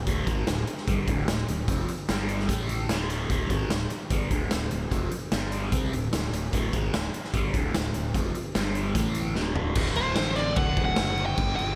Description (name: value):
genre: hard rock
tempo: 149 BPM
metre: 4/4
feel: straight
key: unclear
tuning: A4 = 442 Hz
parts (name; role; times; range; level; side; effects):
- crunchy overdriven guitar; riff; 0.0-11.8 s; D2 to C4; -33 LUFS; equal; phaser
- fuzz fingered electric bass; bass; 0.0-11.8 s; D1 to C2; -34 LUFS; equal; overdrive
- raw garage drum kit; drums; 0.1-11.7 s; crash cymbal, hi-hat, kick drum, snare drum, toms; -30 LUFS; equal; none
- dark smooth lead guitar; melody; 10.0-11.8 s; C5 to G5; -30 LUFS; equal; overdrive
room: light reverb, small room ambience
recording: none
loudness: -27 LUFS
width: mono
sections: 0.0-9.8 A section; 9.8-11.8 B section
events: drum fill 9.4-9.8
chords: 0.0 D5; 2.1 G5; 2.5 A5; 2.9 D5; 5.3 G5; 5.7 D5; 8.6 G5; 9.0 A5; 9.4 D5; 9.8 D